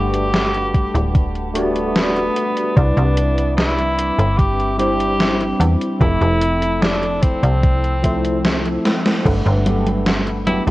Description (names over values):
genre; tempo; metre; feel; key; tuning
vaporwave; 74 BPM; 4/4; straight; G major; A4 = 439 Hz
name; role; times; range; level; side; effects
breathy tenor saxophone; melody; 0.0-10.6 s; B3 to G4; -22 LUFS; equal; tape echo
tine electric piano; accompaniment; 0.0-10.7 s; F3 to F#5; -22 LUFS; equal; ensemble chorus
warbly tape-like pad; sustained chords; 0.0-10.7 s; G3 to E6; -30 LUFS; left 1 dB; chorus, built-in reverb
slap-like FM bass; bass; 0.0-10.7 s; D1 to E2; -20 LUFS; equal; tube saturation
gated 80s digital drum machine; drums; 0.1-10.7 s; congas, crash cymbal, hi-hat, snare drum; -20 LUFS; equal; gated reverb, gated reverb snare, overdrive, vintage 12-bit sampler grit
electronic kick drum; drums; 0.7-9.4 s; none; -16 LUFS; equal; overdrive, vintage 12-bit sampler grit
electric guitar at the edge of break-up; riff; 9.7-10.7 s; B3 to A4; -27 LUFS; right 2 dB; analog chorus, analog delay
room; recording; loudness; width
light reverb, digital ambience; worn, warbling old tape, cassette tape, warbly pitch drift; -15 LUFS; side -18 dB against mid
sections
0.0-9.3 A section; 9.3-10.7 B section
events
drum fill 8.8-9.3; band accent 9.1-9.5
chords
0.0 Gmaj9; 2.8 Cmaj9; 6.0 Fmaj7; 9.3 Gmaj9